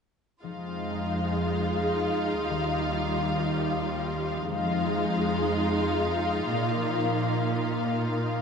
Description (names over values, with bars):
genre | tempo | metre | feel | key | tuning
cinematic | 89 BPM | 3/4 | uneven beats, rubato | F minor | A4 = 440 Hz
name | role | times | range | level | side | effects
muted studio violin section | second line | 0.4-8.4 s | F4 to F5 | -31 LUFS | left 2 dB | none
muted studio viola section | accompaniment | 0.4-8.4 s | G3 to Eb4 | -30 LUFS | right 1 dB | none
concert harp | arpeggios | 0.4-8.4 s | Bb2 to Bb4 | -32 LUFS | left 4 dB | none
muted studio cello section | bass | 0.4-8.4 s | Eb2 to Bb2 | -32 LUFS | right 3 dB | none
room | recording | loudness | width
moderate scoring stage reverb, RT60 1.6 s | nothing above 10.9 kHz | -25 LUFS | side -6 dB against mid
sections
0.4-8.4 A section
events
none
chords
0.4 Fm7; 2.5 Ebadd9; 4.5 Fm7; 6.5 Bbsus4